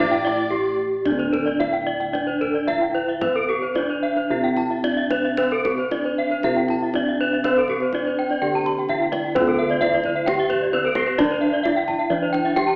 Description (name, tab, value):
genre	Balinese gamelan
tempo	111-131 BPM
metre	4/4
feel	straight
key	D slendro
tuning	A4 = 442 Hz
part	gamelan-type bronze metallophone	melody	0.0-12.8 s	C4-45c to G4-35c	-24 LUFS	equal	none
part	rich erhu	second line	0.0-0.7 s	D5	-29 LUFS	equal	none
part	gamelan-type bronze metallophone	arpeggios	0.0-12.7 s	G4-35c to C6-45c	-24 LUFS	equal	none
part	gamelan-type bossed gongs	bass	0.0-12.8 s	D2 to C5-45c	-25 LUFS	equal	none
part	gamelan-type bronze metallophone	arpeggios	0.1-12.8 s	G4-35c to A5+25c	-26 LUFS	equal	none
part	kendang	percussion	0.1-12.7 s	none	-33 LUFS	equal	none
room	wet recital hall reverb, RT60 1.5 s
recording	recorded in a church or concert hall, AM radio sound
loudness	-18 LUFS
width	side -35 dB against mid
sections	0.0-1.1 A section; 1.1-9.4 B section; 9.4-12.8 C section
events	break 0.3-1.1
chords	none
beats	0.52 | 1.06 1.60 2.14 2.68 | 3.22 3.76 4.30 4.84 | 5.38 5.92 6.44 6.95 | 7.45 7.94 8.42 8.89 | 9.36 9.81 10.27 10.73 | 11.19 11.65 12.11 12.56